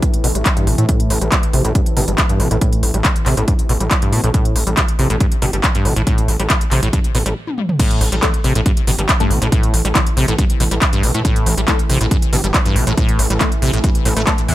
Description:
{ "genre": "driving peak-time techno", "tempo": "139 BPM", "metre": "4/4", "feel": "straight", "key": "A minor", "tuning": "A4 = 440 Hz", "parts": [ { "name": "analog drone", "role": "drone", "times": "0.0-14.5 s", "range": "A2 to E3", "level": "-28 LUFS", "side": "equal", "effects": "chorus, sidechain pumping" }, { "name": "electronic kick drum", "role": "drums", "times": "0.0-14.4 s", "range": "none", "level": "-16 LUFS", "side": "equal", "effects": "overdrive" }, { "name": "techno drum kit", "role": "drums", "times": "0.0-14.5 s", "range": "crash cymbal, handclaps, hi-hat, toms", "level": "-20 LUFS", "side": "equal", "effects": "overdrive" }, { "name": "acid bass, saw", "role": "riff", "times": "0.2-14.5 s", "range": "G2 to A3", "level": "-20 LUFS", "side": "equal", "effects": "analog chorus, sidechain pumping, ping-pong delay" }, { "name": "gritty driven synth bass", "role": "bass", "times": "0.2-14.5 s", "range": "G1 to A2", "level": "-18 LUFS", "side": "equal", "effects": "sidechain pumping" }, { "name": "filtered dub chord stab", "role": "stabs", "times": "8.2-14.3 s", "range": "E3 to A4", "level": "-26 LUFS", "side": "left 5 dB", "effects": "phaser, wide subtle chorus, sidechain pumping, ping-pong delay" } ], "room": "light reverb, digital ambience", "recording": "none", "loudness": "-13 LUFS", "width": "side -15 dB against mid", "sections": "0.0-7.8 A section; 7.8-14.5 B section", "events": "filter sweep on acid bass 0.0-7.8; stop 7.4-7.8; drum fill 7.5-7.8; drop 7.8-14.5", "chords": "0.0 A5" }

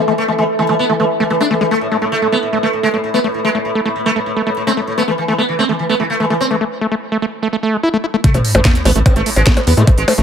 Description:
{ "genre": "psychedelic trance", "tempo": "147 BPM", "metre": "4/4", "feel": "straight", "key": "unclear", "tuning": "A4 = 439 Hz", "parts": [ { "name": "sitar", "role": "melody", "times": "0.0-10.2 s", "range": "A2 to D4", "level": "-18 LUFS", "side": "equal", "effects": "phaser, sidechain pumping, dub echo" }, { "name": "deep dark ambient pad", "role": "texture", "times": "0.0-6.6 s", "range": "A4 to B5", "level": "-21 LUFS", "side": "equal", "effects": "chorus, built-in reverb, sidechain pumping" }, { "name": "overdriven acid bass", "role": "riff", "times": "0.1-10.2 s", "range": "G#3 to E4", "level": "-18 LUFS", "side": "moving between left 5 dB and right 6 dB", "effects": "auto-pan, sidechain pumping, dub echo" }, { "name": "electronic kick drum", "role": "drums", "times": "8.2-10.0 s", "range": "none", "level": "-12 LUFS", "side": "equal", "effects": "overdrive" }, { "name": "techno drum kit", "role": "drums", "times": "8.2-10.2 s", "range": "hi-hat, percussion blips, snare drum", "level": "-17 LUFS", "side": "equal", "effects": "none" }, { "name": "sub drop", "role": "sound effects", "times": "8.2-9.9 s", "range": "none", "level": "-21 LUFS", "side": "equal", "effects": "none" }, { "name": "tight sequencer bass", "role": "bass", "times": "8.3-10.2 s", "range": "A1 to A2", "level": "-13 LUFS", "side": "equal", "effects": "tube saturation" }, { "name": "formant-sweep wobble bass", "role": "second line", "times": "9.1-10.2 s", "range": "G#3 to C4", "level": "-27 LUFS", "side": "left 2 dB", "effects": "chorus, cassette tape, sidechain pumping, high-pass filter, dub echo" } ], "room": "light reverb, digital ambience", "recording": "none", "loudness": "-13 LUFS", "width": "side -8 dB against mid", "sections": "0.0-8.2 A section; 8.2-10.2 B section", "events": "break 6.6-8.2; drop 8.2-10.2; impact 8.2-9.9", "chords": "0.0 A5" }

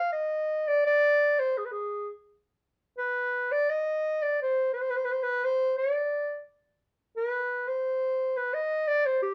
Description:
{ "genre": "klezmer", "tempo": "86 BPM", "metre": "3/4", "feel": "straight", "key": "unclear", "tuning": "A4 = 439 Hz", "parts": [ { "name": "mellow clarinet", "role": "solo", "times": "0.0-9.3 s", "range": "G4 to F5", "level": "-28 LUFS", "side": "equal", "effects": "none" } ], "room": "wet studio reverb, RT60 0.6 s", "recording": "none", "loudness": "-28 LUFS", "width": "mono", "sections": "0.0-9.3 A section", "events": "none", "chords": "none" }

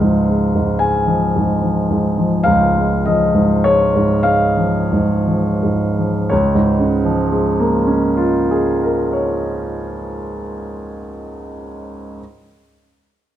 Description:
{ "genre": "classical, impressionist solo piano", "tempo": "27-37 BPM (dotted quarters)", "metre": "6/8", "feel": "rubato", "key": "Db major", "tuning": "A4 = 440 Hz", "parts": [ { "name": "clear grand piano", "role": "solo", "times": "0.0-12.2 s", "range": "Db2 to Ab5", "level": "-14 LUFS", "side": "equal", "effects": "none" } ], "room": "moderate recital hall reverb, RT60 1.6 s", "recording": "close, detailed microphones", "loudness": "-14 LUFS", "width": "side -11 dB against mid", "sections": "0.0-6.3 A section; 6.3-10.0 B section", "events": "slowing down 0.0-6.3", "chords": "0.0 Db; 6.3 Db6" }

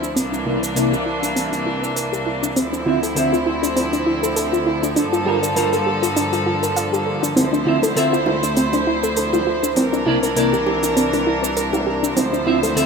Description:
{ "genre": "sunset chillout", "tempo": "100 BPM", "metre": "4/4", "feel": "swing 55% on 16ths", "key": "D minor", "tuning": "A4 = 441 Hz", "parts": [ { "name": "rich chamber string section", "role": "sustained chords", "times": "0.0-12.9 s", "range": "C2 to C5", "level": "-21 LUFS", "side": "right 1 dB", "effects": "vintage 12-bit sampler grit" }, { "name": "soft round pluck", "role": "arpeggios", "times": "0.0-12.9 s", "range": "C4 to F5", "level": "-21 LUFS", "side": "left 1 dB", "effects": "chorus, ping-pong delay" }, { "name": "electronic cabasa and hi-hat", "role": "drums", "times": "0.0-12.9 s", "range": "none", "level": "-27 LUFS", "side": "right 2 dB", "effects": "none" }, { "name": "clean electric guitar", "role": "accompaniment", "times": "0.5-12.9 s", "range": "C3 to E5", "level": "-21 LUFS", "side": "moving between left 3 dB and right 5 dB", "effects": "auto-pan, low-pass filter, ping-pong delay" }, { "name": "bongos", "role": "percussion", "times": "7.4-12.7 s", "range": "none", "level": "-28 LUFS", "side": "right 3 dB", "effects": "none" } ], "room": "wet lush hall reverb, RT60 2.0 s", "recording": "rough home demo mix", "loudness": "-17 LUFS", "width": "side -5 dB against mid", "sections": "0.0-12.9 A section", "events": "filter sweep on clean electric guitar 0.0-12.9; filter sweep on synth arpeggio sound 0.0-12.9", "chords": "0.2 C9; 2.6 Dm9; 5.0 Gm9; 7.4 Dm9; 9.8 C9; 12.2 Dm9" }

